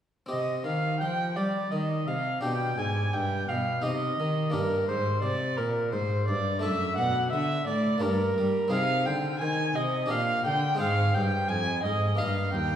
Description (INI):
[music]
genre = classical, baroque-style sonata movement with continuo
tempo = 86 BPM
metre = 3/4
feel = straight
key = C minor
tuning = A4 = 440 Hz
[part]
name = warm oboe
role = melody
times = 0.3-12.8 s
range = Bb4 to Ab5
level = -35 LUFS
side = left 5 dB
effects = none
[part]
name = dark violin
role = second line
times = 0.3-12.8 s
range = Bb4 to Ab5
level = -29 LUFS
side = right 3 dB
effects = none
[part]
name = harpsichord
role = accompaniment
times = 0.3-12.8 s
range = Eb2 to Eb5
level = -32 LUFS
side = left 2 dB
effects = none
[part]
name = rich cello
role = bass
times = 0.3-12.8 s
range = Eb2 to G3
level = -30 LUFS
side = equal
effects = none
[sound]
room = wet recital hall reverb, RT60 1.5 s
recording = heard from further back in the room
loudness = -25 LUFS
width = side -9 dB against mid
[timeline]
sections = 0.3-12.8 A section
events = none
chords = 0.3 Cm; 2.4 G; 3.8 Cm; 4.5 Gm; 6.6 D/F#; 8.0 Gm; 8.7 Ab/C; 10.1 Gm/Bb; 10.8 Fm; 12.2 Eb/G